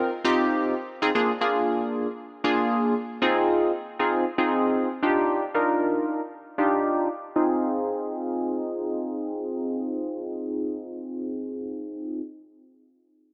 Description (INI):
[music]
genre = pop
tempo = 116 BPM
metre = 4/4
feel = straight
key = F dorian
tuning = A4 = 440 Hz
[part]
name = funky polysynth comp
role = accompaniment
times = 0.0-12.2 s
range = Bb3 to Bb4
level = -26 LUFS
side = equal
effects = chorus, low-pass filter
[sound]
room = moderate lush hall reverb, RT60 3.1 s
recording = dry, gritty hardware recording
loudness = -26 LUFS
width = mono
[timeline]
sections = 0.0-7.4 A section; 7.4-11.5 B section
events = filter sweep on analog polysynth 0.0-7.4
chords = 0.0 F7(no3); 1.1 Bb7; 3.2 Fm7; 5.0 Ebmaj9; 7.4 Fm7